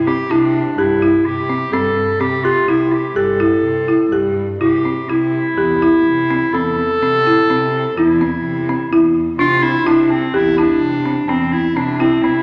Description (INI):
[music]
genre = contemporary instrumental, chamber music in an uneven meter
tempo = 126 BPM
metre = 5/4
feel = straight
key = unclear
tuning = A4 = 442 Hz
[part]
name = folk marimba with medium hard mallets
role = arpeggios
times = 0.0-12.4 s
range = C4 to G4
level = -18 LUFS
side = equal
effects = none
[part]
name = dark cello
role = bass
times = 0.0-12.4 s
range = E2 to C3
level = -26 LUFS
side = equal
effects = none
[part]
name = clear clarinet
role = second line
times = 0.1-12.4 s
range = C4 to A4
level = -20 LUFS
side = equal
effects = none
[sound]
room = wet recital hall reverb, RT60 1.7 s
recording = none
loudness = -16 LUFS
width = mono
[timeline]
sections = 0.0-12.4 A section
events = none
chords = 0.0 C; 5.1 Am (rootless)